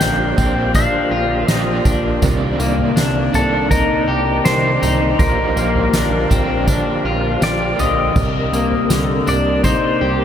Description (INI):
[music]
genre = dream pop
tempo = 81 BPM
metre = 4/4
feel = straight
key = unclear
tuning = A4 = 439 Hz
[part]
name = pedal steel guitar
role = melody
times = 0.0-10.2 s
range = A4 to G5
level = -21 LUFS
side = left 2 dB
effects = tape echo
[part]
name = overdriven semi-hollow guitar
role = accompaniment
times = 0.0-8.7 s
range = Bb2 to G4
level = -25 LUFS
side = right 5 dB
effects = tremolo, lush chorus
[part]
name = percussive tonewheel organ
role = sustained chords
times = 0.0-10.2 s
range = C3 to F5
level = -23 LUFS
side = right 1 dB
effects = chorus vibrato, fast rotary speaker
[part]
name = electric guitar at the edge of break-up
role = arpeggios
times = 0.0-10.2 s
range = D3 to G4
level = -21 LUFS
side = left 4 dB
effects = lush chorus, tape echo
[part]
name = fat analog bass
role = bass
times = 0.0-10.2 s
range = Bb1 to C2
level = -22 LUFS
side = equal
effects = none
[part]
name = soft-mallet drum kit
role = drums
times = 0.0-9.8 s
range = crash cymbal, kick drum, snare drum, tambourine, toms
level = -20 LUFS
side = equal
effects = none
[sound]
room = wet huge ambient reverb, RT60 9.3 s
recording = dreamy mix soaked in reverb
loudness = -14 LUFS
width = side -9 dB against mid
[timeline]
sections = 0.0-8.2 A section; 8.2-10.2 B section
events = none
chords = 0.0 Bb6; 2.2 Cm9; 5.2 Bb6; 8.2 Cm9